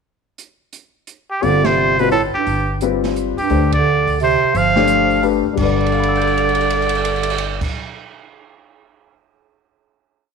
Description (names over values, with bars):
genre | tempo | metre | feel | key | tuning
modal jazz | 173 BPM | 3/4 | swing 65% on 8ths | G mixolydian | A4 = 440 Hz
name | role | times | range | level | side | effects
open jazz drum kit | drums | 0.4-9.1 s | crash cymbal, hi-hat, kick drum, ride cymbal, snare drum | -27 LUFS | right 5 dB | none
trumpet with straight mute | melody | 1.3-7.6 s | G4 to F5 | -18 LUFS | equal | none
warm bass clarinet | second line | 1.4-7.6 s | G2 to F3 | -20 LUFS | right 11 dB | none
warm concert grand piano | accompaniment | 1.4-7.8 s | G2 to F7 | -20 LUFS | left 13 dB | none
upright bass | bass | 1.4-7.6 s | G1 to D2 | -22 LUFS | equal | none
room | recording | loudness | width
moderate echo chamber reverb, RT60 1.6 s, small room ambience | 1960s-style stereo with parts hard left and right | -14 LUFS | side -5 dB against mid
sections
0.4-1.4 pickup bar; 1.4-5.6 A section; 5.6-7.7 final chord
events
band accent 1.6, 3.7; drum fill 5.8-7.6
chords
0.4 N.C.; 1.4 G9sus4; 5.6 G